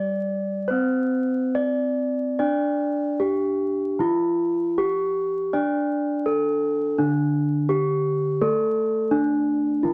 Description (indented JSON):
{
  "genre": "gamelan",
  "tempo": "69-84 BPM",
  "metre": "4/4",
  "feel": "straight",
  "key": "D slendro",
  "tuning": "A4 = 440 Hz",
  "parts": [
    { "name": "gamelan-type bronze metallophone", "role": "melody", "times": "0.0-9.9 s", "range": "D4 to D5", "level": "-25 LUFS", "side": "equal", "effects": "none" },
    { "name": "gamelan-type bronze metallophone", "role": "accompaniment", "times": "0.0-9.9 s", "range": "D3 to D4", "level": "-28 LUFS", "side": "equal", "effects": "none" }
  ],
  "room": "wet studio reverb, RT60 0.8 s",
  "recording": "vinyl crackle",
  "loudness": "-23 LUFS",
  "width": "mono",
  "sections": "0.0-7.0 A section; 7.0-9.9 B section",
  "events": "none",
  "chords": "none"
}